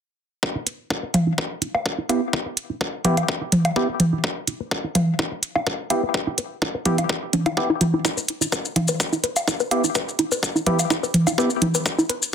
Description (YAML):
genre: minimal techno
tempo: 126 BPM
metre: 4/4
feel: swing 54% on 16ths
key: E minor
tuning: A4 = 440 Hz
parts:
  - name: electronic kick drum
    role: drums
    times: 0.4-12.0 s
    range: none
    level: -25 LUFS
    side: left 1 dB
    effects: high-pass filter on kick, high-pass filter on room
  - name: hollow square pluck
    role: riff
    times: 0.6-12.1 s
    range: D4 to B4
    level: -26 LUFS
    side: equal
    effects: chorus, sidechain pumping, dub echo
  - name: electronic hi-hat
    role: drums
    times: 0.7-12.2 s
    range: none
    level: -24 LUFS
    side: right 2 dB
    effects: overdrive
  - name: electronic toms and woodblock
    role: percussion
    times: 1.1-11.7 s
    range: none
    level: -22 LUFS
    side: equal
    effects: ping-pong delay
  - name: percussive organ stab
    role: stabs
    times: 2.1-11.5 s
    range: B3 to G4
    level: -25 LUFS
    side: equal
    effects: chorus, phaser, vintage 12-bit sampler grit, ping-pong delay
  - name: maracas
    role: percussion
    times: 8.1-12.3 s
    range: none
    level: -25 LUFS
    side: left 5 dB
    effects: none
room: moderate studio reverb, RT60 0.6 s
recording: dense, heavily limited modern master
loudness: -20 LUFS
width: side -8 dB against mid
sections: 0.4-12.3 A section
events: filter sweep on synth arpeggio sound 0.4-12.3; filter sweep on synth stab 0.4-12.3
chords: 0.4 Em